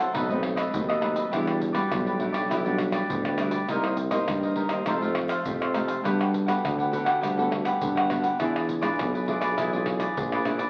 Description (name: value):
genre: samba and choro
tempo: 102 BPM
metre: 4/4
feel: straight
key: unclear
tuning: A4 = 440 Hz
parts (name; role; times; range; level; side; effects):
- cavaquinho; accompaniment; 0.0-10.7 s; D4 to F#5; -30 LUFS; equal; none
- nylon-string guitar; accompaniment; 0.0-10.6 s; B2 to A4; -33 LUFS; equal; none
- tube shaker, surdo, pandeiro and tamborim; percussion; 0.1-10.7 s; none; -35 LUFS; equal; none
- warm tuba; bass; 0.2-10.7 s; Bb1 to G2; -32 LUFS; equal; none
room: wet large studio reverb, RT60 0.8 s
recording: very old 78 rpm record, vinyl crackle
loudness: -26 LUFS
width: mono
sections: 0.0-10.7 A section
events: none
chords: 0.1 B7b9; 1.3 Em9; 3.7 Cm7; 4.9 F9; 6.0 Gmaj9; 8.4 E7b9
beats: 0.14 0.73 | 1.32 1.91 2.50 3.09 | 3.68 4.27 4.86 5.45 | 6.04 6.63 7.22 7.81 | 8.40 8.99 9.57 10.16